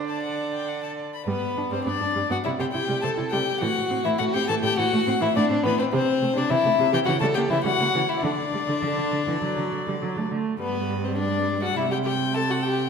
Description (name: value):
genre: quick classical-period movement for string quartet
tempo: 103 BPM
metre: 4/4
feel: straight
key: G major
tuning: A4 = 441 Hz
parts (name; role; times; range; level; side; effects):
- warm violin; second line; 0.0-12.9 s; B3 to D5; -27 LUFS; left 2 dB; none
- warm viola; accompaniment; 0.0-12.9 s; C3 to E4; -29 LUFS; right 3 dB; none
- warm cello; bass; 0.0-12.9 s; G2 to D3; -29 LUFS; right 4 dB; none
- rich violin; melody; 0.1-12.9 s; B4 to B5; -26 LUFS; left 7 dB; none
room: wet scoring stage reverb, RT60 1.6 s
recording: none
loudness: -22 LUFS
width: side -6 dB against mid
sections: 0.0-1.3 A section; 1.3-12.9 B section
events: none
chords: 0.1 D; 1.3 G; 2.4 C5; 3.6 A5; 5.9 Am/C (rootless); 7.1 C#dim7; 8.2 N.C.; 9.4 D; 10.6 Gmaj7; 11.8 C5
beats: 0.09 0.68 | 1.27 1.86 2.45 3.03 | 3.62 4.20 4.77 5.35 | 5.93 6.50 7.07 7.64 | 8.23 8.83 9.42 10.01 | 10.60 11.19 11.77 12.35